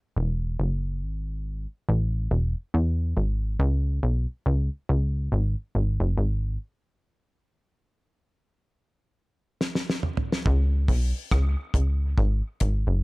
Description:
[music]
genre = dub reggae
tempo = 70 BPM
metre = 4/4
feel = swing 59% on 16ths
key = unclear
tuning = A4 = 440 Hz
[part]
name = plucky analog bass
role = bass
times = 0.2-13.0 s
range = E1 to E2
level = -23 LUFS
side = equal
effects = none
[part]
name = damped 70s drum kit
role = drums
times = 9.6-12.8 s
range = hi-hat, kick drum, rim click, snare drum, toms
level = -26 LUFS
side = equal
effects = none
[sound]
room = little or no reverb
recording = dark, warm production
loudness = -23 LUFS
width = side -26 dB against mid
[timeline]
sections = 0.0-10.5 A section; 10.5-13.0 B section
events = break 7.0-10.5; drum fill 9.6-10.5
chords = none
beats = | 0.15 1.01 1.87 2.73 | 3.59 4.45 5.31 6.17 | 7.02 7.88 8.74 9.60 | 10.46 11.32 12.18

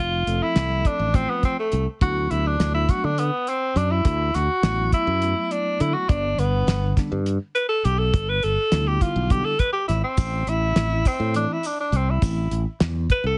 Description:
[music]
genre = progressive instrumental, band music in an uneven meter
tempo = 206 BPM (eighths)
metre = 7/8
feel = straight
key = unclear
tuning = A4 = 440 Hz
[part]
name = mellow tenor saxophone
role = melody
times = 0.0-13.4 s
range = A3 to B4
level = -26 LUFS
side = equal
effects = none
[part]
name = modern bright fingered electric bass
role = bass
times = 0.0-13.4 s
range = F1 to D3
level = -26 LUFS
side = equal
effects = none
[part]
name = tine electric piano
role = accompaniment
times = 0.3-12.4 s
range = D3 to A4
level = -33 LUFS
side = equal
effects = none
[part]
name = damped 70s drum kit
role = drums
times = 0.3-13.2 s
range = hi-hat, kick drum, snare drum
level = -24 LUFS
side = equal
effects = none
[part]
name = tube shaker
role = percussion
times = 10.2-12.5 s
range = none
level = -44 LUFS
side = equal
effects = none
[sound]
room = light reverb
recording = heavily compressed radio sound, multiband compression, nothing above 10.4 kHz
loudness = -22 LUFS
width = mono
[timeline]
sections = 0.0-13.4 A section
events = tenor saxophone solo 0.0-13.4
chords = 0.0 F; 2.0 D6; 6.1 G; 10.2 Am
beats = 0.28 0.57 0.86 1.15 1.44 1.73 | 2.02 2.31 2.60 2.90 3.19 3.48 3.77 | 4.06 4.35 4.64 4.93 5.22 5.52 5.81 | 6.10 6.39 6.68 6.97 7.26 7.56 7.85 | 8.14 8.43 8.72 9.01 9.31 9.60 9.89 | 10.18 10.47 10.77 11.06 11.35 11.64 11.93 | 12.23 12.52 12.81 13.10

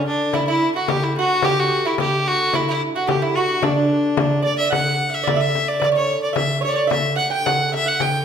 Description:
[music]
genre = medieval dance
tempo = 110 BPM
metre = 2/4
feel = straight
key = D major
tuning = A4 = 440 Hz
[part]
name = rich fiddle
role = melody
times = 0.0-8.2 s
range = D4 to G5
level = -20 LUFS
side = equal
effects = none
[part]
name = dark hurdy-gurdy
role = drone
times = 0.0-8.2 s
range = D3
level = -31 LUFS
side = right 1 dB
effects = none
[part]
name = lute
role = second line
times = 0.3-8.2 s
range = D4 to G5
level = -22 LUFS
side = right 4 dB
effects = none
[part]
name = frame drum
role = percussion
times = 0.3-8.2 s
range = none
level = -24 LUFS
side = left 4 dB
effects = none
[sound]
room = wet recital hall reverb, RT60 1.4 s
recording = minimal, uncompressed stereo recording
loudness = -17 LUFS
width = side -8 dB against mid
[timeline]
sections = 0.0-4.7 A section; 4.7-8.2 B section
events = none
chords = none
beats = | 0.33 0.88 | 1.43 1.97 | 2.52 3.07 | 3.62 4.17 | 4.72 5.26 | 5.81 6.36 | 6.91 7.45 | 8.00

